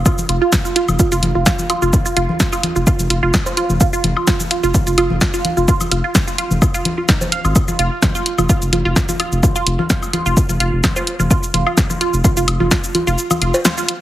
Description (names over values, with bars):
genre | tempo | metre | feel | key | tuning
minimal techno | 128 BPM | 4/4 | swing 53% on 16ths | unclear | A4 = 440 Hz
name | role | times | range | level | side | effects
saturated sub bass | bass | 0.0-13.5 s | F1 to Ab1 | -18 LUFS | equal | tube saturation, sidechain pumping
resonant blip pluck | riff | 0.1-13.8 s | Eb4 to F5 | -19 LUFS | right 3 dB | phaser, sidechain pumping, tape echo
electronic kick drum | drums | 0.1-12.8 s | none | -16 LUFS | equal | none
punchy analog drum machine | drums | 0.1-14.0 s | cabasa, hi-hat, snare drum | -19 LUFS | equal | none
woodblock, congas and cowbell | percussion | 0.1-13.8 s | none | -23 LUFS | left 2 dB | none
room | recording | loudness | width
light reverb, digital ambience | heavily compressed radio sound, multiband compression | -14 LUFS | side -14 dB against mid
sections
0.0-14.0 A section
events
kick drops out 13.2-14.0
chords
none